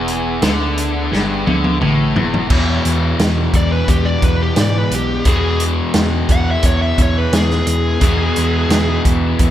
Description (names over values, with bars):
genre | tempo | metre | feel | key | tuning
blues rock power trio and southern rock | 87 BPM | 4/4 | straight | E major | A4 = 440 Hz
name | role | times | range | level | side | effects
bluesy overdriven lead guitar | melody | 0.0-9.0 s | G4 to F#5 | -21 LUFS | left 1 dB | distortion
bluesy overdriven lead guitar | second line | 0.0-1.8 s | none | barely audible | none | none
overdriven tonewheel organ | sustained chords | 0.0-9.5 s | G#3 to E5 | -30 LUFS | right 2 dB | slow rotary speaker, chorus vibrato
distorted electric guitar | riff | 0.0-9.5 s | E2 to E3 | -19 LUFS | left 1 dB | distortion
mellow tine electric piano | bass | 0.0-9.5 s | E1 to G#2 | -19 LUFS | equal | fast stereo tremolo
vintage drum kit | drums | 0.1-9.5 s | crash cymbal, hi-hat, kick drum, snare drum, toms | -17 LUFS | equal | none
room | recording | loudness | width
moderate lush hall reverb, RT60 1.8 s, small room ambience | big arena sound | -13 LUFS | side -12 dB against mid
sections
0.0-2.5 A section; 2.5-9.5 B section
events
drum fill 1.1-2.5; lead electric guitar solo 2.5-9.5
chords
0.0 E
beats
0.42 1.11 1.81 | 2.50 3.19 3.88 4.57 | 5.26 5.95 6.64 7.33 | 8.02 8.71 9.40